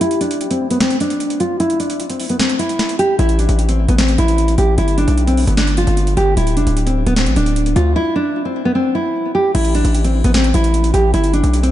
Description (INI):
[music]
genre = hip hop, trap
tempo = 151 BPM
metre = 4/4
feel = half-time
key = A minor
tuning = A4 = 440 Hz
[part]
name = nylon-string guitar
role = melody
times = 0.0-11.7 s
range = B3 to G4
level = -16 LUFS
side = equal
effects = low-pass filter, ping-pong delay
[part]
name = booming analog drum machine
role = drums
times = 0.0-11.7 s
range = crash cymbal, hi-hat, snare drum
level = -23 LUFS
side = equal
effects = overdrive
[part]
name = hard-hitting 808-style bass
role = bass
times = 3.2-11.7 s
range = D1 to D2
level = -15 LUFS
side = equal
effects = none
[sound]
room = light reverb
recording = nothing above 10.9 kHz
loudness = -13 LUFS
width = side -12 dB against mid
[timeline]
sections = 0.0-9.5 A section; 9.5-11.7 B section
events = break 0.0-3.2, 8.0-9.5; filter sweep on nylon-string guitar 0.0-3.2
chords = 0.0 N.C.; 3.2 A5; 4.8 G7; 6.4 D5; 8.0 N.C.; 9.5 A5; 11.1 G